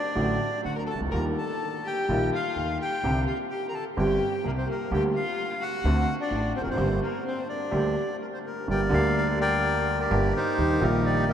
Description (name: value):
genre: tango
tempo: 127 BPM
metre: 4/4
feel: rubato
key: G minor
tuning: A4 = 440 Hz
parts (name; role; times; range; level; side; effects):
- bandoneon; melody; 0.0-11.3 s; Eb4 to Bb5; -29 LUFS; left 2 dB; none
- warm violin; second line; 0.0-8.2 s; Bb3 to Bb4; -33 LUFS; left 3 dB; none
- clear upright piano; accompaniment; 0.2-11.3 s; G1 to G4; -27 LUFS; right 1 dB; none
- upright bass; bass; 0.2-11.3 s; E1 to Eb2; -30 LUFS; equal; none
room: wet cathedral reverb, RT60 6.4 s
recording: in a vast, echoing space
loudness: -24 LUFS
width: side -9 dB against mid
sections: 0.0-8.7 A section; 8.7-11.3 A section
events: stop 8.2-8.7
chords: 0.0 D; 1.1 Ebadd9; 3.0 Csus2; 4.9 Gm/D; 5.8 D7; 6.8 Gm; 10.6 Eb